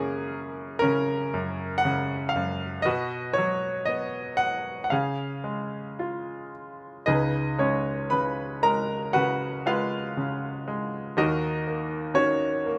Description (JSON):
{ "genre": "classical, lyrical solo piano", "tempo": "59 BPM", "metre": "4/4", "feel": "rubato", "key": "F# major", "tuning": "A4 = 440 Hz", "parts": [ { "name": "bright grand piano", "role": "solo", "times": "0.0-12.8 s", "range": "Db2 to Cb6", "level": "-27 LUFS", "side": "equal", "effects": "none" } ], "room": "moderate studio reverb, RT60 0.6 s", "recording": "none", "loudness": "-27 LUFS", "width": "mono", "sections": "0.0-7.1 A section; 7.1-12.8 B section", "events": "none", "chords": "0.0 F#add9; 2.9 B5; 4.9 C#; 7.1 Db7; 11.2 Ebm7" }